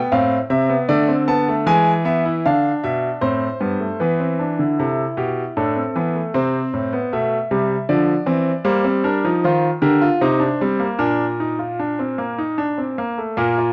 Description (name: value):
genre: classical, baroque-style 3-part fugue for grand piano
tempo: 77 BPM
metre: 3/4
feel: straight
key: D minor, Bb major from 8.7 s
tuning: A4 = 442 Hz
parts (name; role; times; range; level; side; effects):
- bright concert grand piano; solo; 0.0-13.7 s; G2 to A5; -19 LUFS; equal; none
room: moderate stone room reverb, RT60 1.2 s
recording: worn, warbling old tape, cassette tape, warbly pitch drift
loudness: -19 LUFS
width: mono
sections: 0.0-4.0 A section; 4.0-13.4 B section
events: none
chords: 0.0 Am; 0.9 D5; 1.7 E7; 3.2 Am; 4.0 Em; 5.6 D5/A; 6.4 C; 7.9 Dm9; 8.7 Gm; 10.2 Cm9; 11.0 Bb